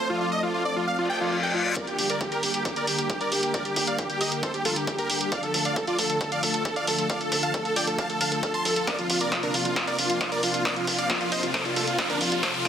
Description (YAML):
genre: uplifting trance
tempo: 135 BPM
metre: 4/4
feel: straight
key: G minor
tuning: A4 = 441 Hz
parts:
  - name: dense compressed supersaw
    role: melody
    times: 0.0-12.7 s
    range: D4 to C6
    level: -26 LUFS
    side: right 1 dB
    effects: sidechain pumping, tape echo
  - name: lush unison pad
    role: sustained chords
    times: 0.0-12.7 s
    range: C3 to D5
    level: -31 LUFS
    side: left 1 dB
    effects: chorus, sidechain pumping
  - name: reverse cymbal and riser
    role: sound effects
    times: 1.0-1.8, 10.4-12.7 s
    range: none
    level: -33 LUFS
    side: left 2 dB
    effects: none
  - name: electronic kick drum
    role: drums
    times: 1.8-12.5 s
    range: none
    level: -34 LUFS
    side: equal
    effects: high-pass filter on kick, high-pass filter on room
  - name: punchy analog drum machine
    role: drums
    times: 1.8-12.7 s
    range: hi-hat, snare drum, toms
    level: -28 LUFS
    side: equal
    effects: high-pass filter on hats, high-pass filter on snare, high-pass filter on toms, high-pass filter on room
  - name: tight sequencer bass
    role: bass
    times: 2.0-12.7 s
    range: F1 to D2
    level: -42 LUFS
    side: equal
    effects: none
room: light reverb, digital ambience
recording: dense, heavily limited modern master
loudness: -23 LUFS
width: side -8 dB against mid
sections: 0.0-1.8 A section; 1.8-12.7 B section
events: reverse cymbal 1.0-1.8; build-up 1.8-12.7; drum fill 8.9-12.7; riser 10.4-12.7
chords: 0.0 F; 1.8 Gm; 5.3 Dm; 8.9 Bbadd9